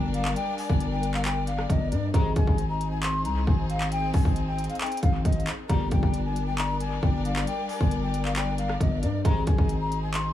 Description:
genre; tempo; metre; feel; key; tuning
hip hop, trap; 135 BPM; 4/4; half-time; G phrygian; A4 = 445 Hz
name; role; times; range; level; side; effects
mellow hollow jazz flute; melody; 0.0-10.3 s; D5 to C6; -32 LUFS; left 3 dB; analog delay
clear symphonic string section; sustained chords; 0.0-10.3 s; G3 to D5; -34 LUFS; left 2 dB; none
distorted 808-style bass; bass; 0.0-10.3 s; G1 to G2; -27 LUFS; left 1 dB; distortion
trap drum kit; drums; 0.1-10.2 s; handclaps, hi-hat, kick drum, rim click; -26 LUFS; equal; none
bright brass ensemble; stabs; 2.1-2.6, 5.7-6.1, 9.2-9.7 s; Bb2 to Ab3; -35 LUFS; right 4 dB; analog delay
room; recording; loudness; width
small room ambience; echo-heavy mix; -23 LUFS; side -12 dB against mid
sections
0.0-10.3 A section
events
none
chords
0.0 Gm; 2.1 Ab; 5.7 Gm; 9.3 Ab

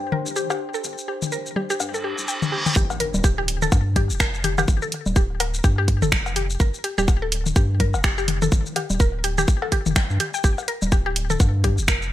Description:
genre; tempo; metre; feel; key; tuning
minimal techno; 125 BPM; 4/4; swing 59% on 16ths; unclear; A4 = 442 Hz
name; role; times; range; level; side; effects
round analog bass; bass; 0.0-12.1 s; D1 to G2; -24 LUFS; equal; sidechain pumping, high-pass filter
warbly tape-like pad; texture; 0.0-2.8 s; D4 to G5; -33 LUFS; left 1 dB; chorus, built-in reverb, sidechain pumping
mallet-like synth pluck; riff; 0.1-11.9 s; G4 to G5; -27 LUFS; equal; chorus, phaser, sidechain pumping, ping-pong delay
electronic toms, cowbell and congas; percussion; 0.1-11.8 s; none; -27 LUFS; left 4 dB; studio reverb, gated reverb, digital delay
garage drum kit; drums; 0.3-12.1 s; finger snaps, hi-hat, shaker; -26 LUFS; equal; overdrive, studio reverb, gated reverb
reverse cymbal and impact; sound effects; 2.0-4.7 s; none; -28 LUFS; right 1 dB; none
electronic kick drum; drums; 2.8-12.0 s; none; -19 LUFS; equal; overdrive, studio reverb
room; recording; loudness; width
little or no reverb; bright 1980s-style digital production; -19 LUFS; side -13 dB against mid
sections
0.0-2.8 A section; 2.8-12.1 B section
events
filter sweep on synth arpeggio sound 0.0-2.8; reverse cymbal 2.0-2.8; drop 2.8-12.1; impact 2.8-4.7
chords
0.0 Gsus4; 2.8 G5

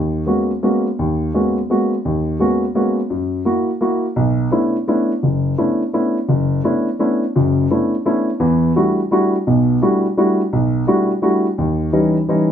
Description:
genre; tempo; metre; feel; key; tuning
jazz; 170 BPM; 3/4; swing 62% on 8ths; G# minor, B minor from 4.2 s; A4 = 440 Hz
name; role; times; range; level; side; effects
dark baby grand piano; solo; 0.0-12.5 s; F#1 to F#4; -15 LUFS; equal; none
room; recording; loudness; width
wet club reverb, RT60 0.6 s; heard from further back in the room; -15 LUFS; side -9 dB against mid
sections
0.0-4.2 A section; 4.2-12.5 B section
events
none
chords
0.0 G#m11; 3.1 F#7; 4.2 Bm11; 8.4 Em11; 11.6 D#7b9

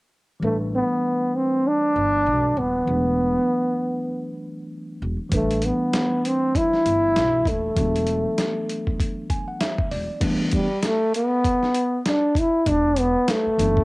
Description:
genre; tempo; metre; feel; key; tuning
hip hop, jazz-hop; 98 BPM; 4/4; swing 59% on 16ths; unclear; A4 = 441 Hz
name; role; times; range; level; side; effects
mellow trombone; melody; 0.4-13.8 s; G3 to E4; -20 LUFS; equal; cassette tape
mellow tine electric piano; accompaniment; 0.4-13.8 s; E3 to G#5; -28 LUFS; equal; medium stereo tremolo, cassette tape
upright bass; bass; 0.4-13.8 s; D#1 to B1; -27 LUFS; equal; none
dusty soul sampler-style drum kit; drums; 5.3-13.8 s; crash cymbal, hi-hat, kick drum, snare drum; -26 LUFS; equal; overdrive
room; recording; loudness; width
light reverb; home recording on cassette; -19 LUFS; side -22 dB against mid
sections
0.4-10.2 A section; 10.2-13.8 B section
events
tine electric piano fill 9.0-10.2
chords
0.4 A9sus4; 2.9 E9sus4; 5.3 A9sus4; 7.8 E9sus4; 10.2 A9sus4; 12.7 E9sus4

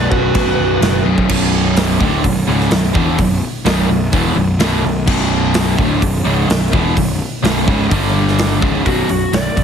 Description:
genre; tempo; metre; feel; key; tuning
hard rock; 127 BPM; 4/4; straight; B minor; A4 = 440 Hz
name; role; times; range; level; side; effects
lead guitar through a small cranked amp; melody; 0.0-1.0, 8.9-9.6 s; F#4 to D5; -20 LUFS; right 1 dB; overdrive, tape echo
smooth overdriven lead guitar; second line; 0.0-1.0 s; F#4; -23 LUFS; right 2 dB; none
cranked stack guitar; riff; 0.0-9.6 s; B1 to G3; -19 LUFS; right 10 dB; overdrive
crunchy overdriven guitar; riff; 0.0-9.6 s; B1 to G3; -19 LUFS; left 8 dB; none
fuzz picked electric bass; bass; 0.0-9.6 s; B0 to G1; -19 LUFS; equal; overdrive
big rock drum kit; drums; 0.1-9.6 s; crash cymbal, hi-hat, kick drum, snare drum; -18 LUFS; equal; none
room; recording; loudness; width
light reverb, studio reverb; heavily compressed radio sound, multiband compression, lossy compression artefacts; -12 LUFS; side -7 dB against mid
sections
0.0-1.3 A section; 1.3-8.9 B section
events
none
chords
0.0 B5; 1.3 Bm; 7.9 G5; 8.6 C#5; 8.9 Bm

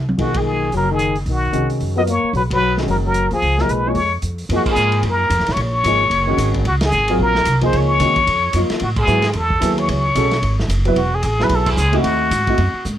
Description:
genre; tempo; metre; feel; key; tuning
modal jazz; 223 BPM; 4/4; swing 60% on 8ths; unclear; A4 = 441 Hz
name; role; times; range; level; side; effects
upright bass; bass; 0.0-13.0 s; E1 to A2; -20 LUFS; equal; none
vintage drum kit; drums; 0.1-12.9 s; crash cymbal, hi-hat, kick drum, ride cymbal, snare drum, toms; -26 LUFS; equal; none
trumpet with plunger mute; melody; 0.2-12.9 s; Gb4 to Eb5; -18 LUFS; left 1 dB; none
warm trombone; second line; 0.2-4.1 s; Eb3 to Cb4; -23 LUFS; left 6 dB; none
warm upright piano; accompaniment; 0.2-12.6 s; Eb3 to B4; -21 LUFS; equal; none
room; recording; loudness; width
light reverb; close, detailed microphones; -15 LUFS; side -11 dB against mid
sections
0.0-4.5 A section; 4.5-13.0 B section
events
drum fill 0.0; band accent 0.3, 2.5, 4.6, 6.8, 8.9, 11.6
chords
0.2 Cbmaj9; 3.4 Db9; 4.5 Gbmaj9; 8.8 Amaj9; 12.0 Ab7b9

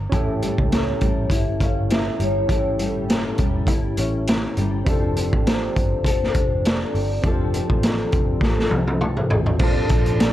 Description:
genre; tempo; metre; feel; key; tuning
indie pop, bedroom pop; 101 BPM; 4/4; swing 55% on 16ths; F major; A4 = 439 Hz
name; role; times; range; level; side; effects
vintage muted picked electric bass; bass; 0.0-10.3 s; E1 to C#2; -25 LUFS; equal; none
nylon-string guitar; accompaniment; 0.1-10.3 s; A2 to A4; -27 LUFS; left 4 dB; ensemble chorus, vibrato effect
soft electric-piano-like synth keys; accompaniment; 0.1-10.3 s; C4 to A5; -29 LUFS; right 2 dB; chorus, phaser, cassette tape
raw garage drum kit; drums; 0.1-10.3 s; crash cymbal, hi-hat, kick drum, snare drum, toms; -21 LUFS; equal; none
vibraphone with medium mallets; melody; 0.7-10.3 s; A4 to F5; -27 LUFS; left 1 dB; wide subtle chorus, slapback echo
room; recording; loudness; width
light reverb, studio ambience; dark, warm production; -18 LUFS; side -13 dB against mid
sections
0.0-9.6 A section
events
drum fill 8.4-9.6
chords
0.1 A7; 4.9 F6; 9.6 Bbmaj7

